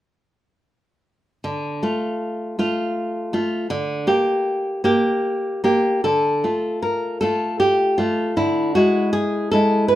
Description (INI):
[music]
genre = romantic piece for solo classical guitar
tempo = 78 BPM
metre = 3/4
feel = rubato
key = D minor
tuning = A4 = 438 Hz
[part]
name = nylon-string guitar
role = solo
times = 1.4-10.0 s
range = D3 to B4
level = -18 LUFS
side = equal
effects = none
[sound]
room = light reverb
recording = band playing live in one room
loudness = -18 LUFS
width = side -14 dB against mid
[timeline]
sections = 1.4-6.0 A section; 6.0-10.0 B section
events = none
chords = 1.4 Dm; 3.7 Gm/D; 6.0 Dm; 8.4 E7/D